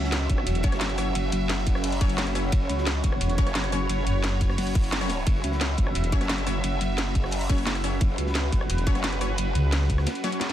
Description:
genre	dark technical drum and bass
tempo	175 BPM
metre	4/4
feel	straight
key	unclear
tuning	A4 = 444 Hz
part	sweeping resonant pad	sustained chords	0.0-10.5 s	F#3 to E5	-34 LUFS	right 3 dB	chorus, sidechain pumping
part	growl bass	bass	0.0-9.5 s	F#1 to C#2	-28 LUFS	equal	chorus, tube saturation
part	crunchy breakbeat drum kit	drums	0.0-10.5 s	hi-hat, ride cymbal, snare drum	-38 LUFS	equal	high-pass filter on cymbals, high-pass filter on hats, high-pass filter on snare, high-pass filter on room
part	granular cloud pad	texture	0.0-10.5 s	C#4 to B5	-33 LUFS	right 1 dB	built-in reverb, sidechain pumping
part	drum and bass drum kit	drums	0.1-10.5 s	hi-hat, rim click, snare drum	-30 LUFS	equal	none
part	electronic kick drum	drums	0.3-10.0 s	none	-23 LUFS	equal	none
part	growling FM bass	bass	0.5-0.6, 3.2-6.1, 8.7-10.1 s	E1 to C#2	-24 LUFS	equal	none
part	orchestra-hit-like synth stab	stabs	0.6-10.5 s	F#3 to C#5	-34 LUFS	left 2 dB	built-in reverb, dub echo
room	little or no reverb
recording	dense, heavily limited modern master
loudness	-22 LUFS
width	side -11 dB against mid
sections	0.0-10.5 A section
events	break 10.1-10.5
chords	0.0 F#5

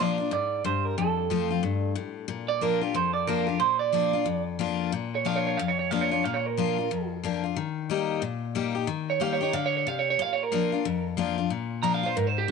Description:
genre	rock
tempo	182 BPM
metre	4/4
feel	swing 60% on 8ths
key	Bb major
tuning	A4 = 441 Hz
part	electric guitar through a small old amp	melody	0.0-12.5 s	G4 to Bb5	-26 LUFS	right 10 dB	phaser, tape echo
part	picked steel-string acoustic guitar	accompaniment	0.0-12.5 s	F2 to G4	-27 LUFS	left 8 dB	none
room	light reverb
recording	1960s-style stereo with parts hard left and right, nothing above 10.9 kHz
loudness	-25 LUFS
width	side -5 dB against mid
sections	0.0-2.3 A section; 2.3-12.5 B section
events	clean electric guitar solo 2.3-12.5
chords	0.0 Bb; 1.0 F; 2.3 Bb; 7.6 Eb; 10.2 Bb

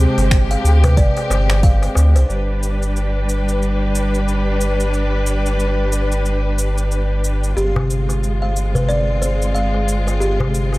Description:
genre	organic downtempo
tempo	91 BPM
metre	4/4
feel	swing 59% on 16ths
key	unclear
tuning	A4 = 442 Hz
part	oud	melody	0.0-1.6 s	C4	-28 LUFS	right 2 dB	tape echo
part	rich studio string section	sustained chords	0.0-10.8 s	G3 to B4	-22 LUFS	equal	sidechain pumping
part	round analog bass	bass	0.0-10.8 s	G1 to D2	-17 LUFS	equal	tube saturation, sidechain pumping
part	deep house drum kit	drums	0.2-10.8 s	cabasa, finger snaps, hi-hat	-26 LUFS	equal	overdrive
part	darbuka	percussion	0.2-2.3, 7.8-10.8 s	none	-23 LUFS	left 2 dB	none
part	electronic kick drum	drums	0.3-1.8 s	none	-15 LUFS	equal	none
part	buzzing kalimba	arpeggios	0.5-2.3, 7.6-10.4 s	G4 to F5	-24 LUFS	right 1 dB	tape echo
room	small room ambience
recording	dry, gritty hardware recording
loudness	-15 LUFS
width	side -20 dB against mid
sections	0.0-2.3 A section; 2.3-10.8 B section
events	none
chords	0.0 Ab6/G; 2.3 G; 7.6 Ab6/G

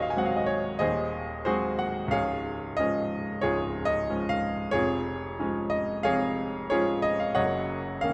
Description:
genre	classical, romantic character piece for solo piano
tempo	91 BPM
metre	4/4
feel	rubato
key	Db major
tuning	A4 = 440 Hz
part	clear baby grand piano	solo	0.0-8.1 s	Db1 to Ab5	-28 LUFS	equal	none
room	moderate concert hall reverb, RT60 1.8 s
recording	none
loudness	-28 LUFS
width	mono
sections	0.0-8.1 A section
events	none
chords	0.0 Ab7/Eb; 2.1 Db; 4.7 Db/F; 7.4 Ebm7/Gb

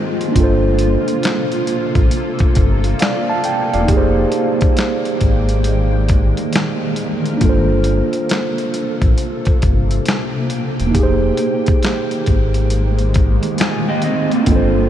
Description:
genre	lo-fi hip hop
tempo	68 BPM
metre	4/4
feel	swing 64% on 16ths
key	G phrygian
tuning	A4 = 440 Hz
part	electric guitar through a small old amp	second line	0.0-0.2, 13.6-14.7 s	Ab3 to Ab4	-24 LUFS	right 2 dB	spring reverb, low-pass filter, tape echo
part	mellow tine electric piano	accompaniment	0.0-14.9 s	A3 to A5	-19 LUFS	right 2 dB	fast stereo tremolo, cassette tape, low-pass filter
part	granular cloud pad	sustained chords	0.0-14.9 s	C3 to G5	-22 LUFS	left 1 dB	built-in reverb, lush chorus, low-pass filter
part	dusty soul sampler-style drum kit	drums	0.2-14.7 s	handclaps, hi-hat, kick drum, snare drum	-18 LUFS	equal	none
part	sub bass with octave	bass	0.4-14.9 s	E1 to A1	-17 LUFS	equal	none
room	light reverb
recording	cassette tape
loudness	-14 LUFS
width	side -11 dB against mid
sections	0.0-7.4 A section; 7.4-14.9 B section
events	none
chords	0.4 Gm11; 3.9 Fm11; 7.4 Gm11; 10.9 Fm11

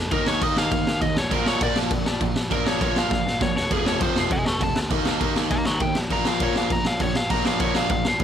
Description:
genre	punk rock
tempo	200 BPM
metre	4/4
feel	straight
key	unclear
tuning	A4 = 440 Hz
part	dark grand piano	bass	0.0-8.2 s	F1 to Bb2	-29 LUFS	left 2 dB	none
part	biting lead guitar	melody	0.1-8.1 s	Ab4 to Db6	-26 LUFS	left 1 dB	overdrive, ping-pong delay
part	distorted electric guitar	riff	0.1-8.2 s	F2 to Eb4	-28 LUFS	right 16 dB	overdrive
part	raw garage guitar	riff	0.1-8.2 s	F2 to Eb4	-30 LUFS	left 16 dB	overdrive
part	raw garage drum kit	drums	0.1-8.2 s	crash cymbal, kick drum, snare drum	-24 LUFS	equal	none
room	light reverb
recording	none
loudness	-20 LUFS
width	side -9 dB against mid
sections	0.0-8.2 A section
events	lead electric guitar solo 0.0-8.2; drum fill 3.1-3.7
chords	0.1 Eb5; 1.3 Bb5; 3.7 F; 4.9 Eb5; 6.1 Bb5

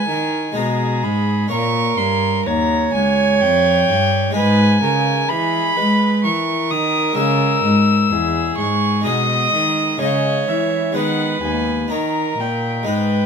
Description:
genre	classical, baroque-style sonata movement with continuo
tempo	63 BPM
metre	3/4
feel	straight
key	G# minor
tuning	A4 = 440 Hz
part	warm violin	melody	0.0-13.3 s	D#5 to E6	-21 LUFS	left 2 dB	none
part	warm violin	second line	0.0-13.3 s	G#4 to D#5	-21 LUFS	right 6 dB	none
part	harpsichord	accompaniment	0.0-13.3 s	Db2 to C#5	-23 LUFS	left 4 dB	none
part	rich cello	bass	0.0-13.3 s	Db2 to G#3	-20 LUFS	equal	none
room	light reverb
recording	close, detailed microphones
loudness	-15 LUFS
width	side -6 dB against mid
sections	0.0-13.3 A section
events	none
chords	0.0 C#m (rootless); 0.6 G#m/B; 1.5 Gdim; 4.3 G#m; 7.2 C#m; 9.1 G#m/B; 10.0 C#m; 11.0 G#m/D#; 11.9 D#7

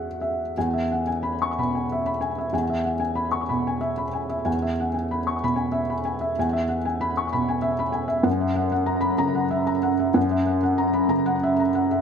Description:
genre	neoclassical minimalist piano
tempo	63 BPM (dotted quarters)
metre	6/8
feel	rubato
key	unclear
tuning	A4 = 440 Hz
part	felt-muted upright piano	solo	0.0-12.0 s	E2 to G#6	-21 LUFS	equal	slapback echo
room	light reverb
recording	close, detailed microphones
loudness	-21 LUFS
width	side -7 dB against mid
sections	0.6-12.0 A section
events	none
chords	0.0 Eadd9; 0.6 E; 8.3 F#7

